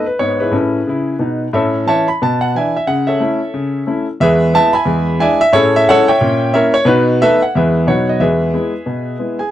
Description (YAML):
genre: jazz, stride piano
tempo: 180 BPM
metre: 4/4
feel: swing 60% on 8ths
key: E major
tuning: A4 = 440 Hz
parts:
  - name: clear grand piano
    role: solo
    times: 0.0-9.5 s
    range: E2 to B5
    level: -12 LUFS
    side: equal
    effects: none
room: light reverb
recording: dry, close 1970s-style studio recording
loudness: -12 LUFS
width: side -12 dB against mid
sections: 0.0-9.5 A section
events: none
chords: 0.2 E/G#; 1.5 A; 2.2 E5/B; 2.9 A/C#; 4.2 E; 4.9 E7; 5.5 Amaj7; 6.2 A#dim7; 6.9 B7; 7.5 E; 7.9 B; 8.2 E